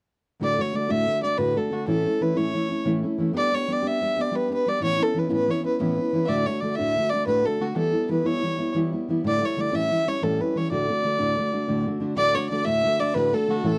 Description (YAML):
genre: celtic folk, Celtic slip jig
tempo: 122 BPM (dotted quarters)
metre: 9/8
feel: straight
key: D major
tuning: A4 = 439 Hz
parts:
  - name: warm fiddle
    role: melody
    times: 0.4-13.8 s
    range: F#4 to E5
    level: -26 LUFS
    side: equal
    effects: none
  - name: fingerpicked steel-string acoustic guitar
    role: accompaniment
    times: 0.4-13.8 s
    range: D2 to G4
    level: -27 LUFS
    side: equal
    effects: none
  - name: clear fiddle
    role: second line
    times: 12.2-13.8 s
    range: A4 to E5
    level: -36 LUFS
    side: equal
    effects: none
room: light reverb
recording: dry, close 1970s-style studio recording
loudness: -24 LUFS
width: mono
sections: 0.4-12.2 A section; 12.2-13.8 A section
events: none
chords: 0.4 D; 1.9 A; 3.3 G; 4.8 Aadd9; 6.3 D; 7.8 Em; 9.2 A7sus4; 9.7 A7; 10.7 D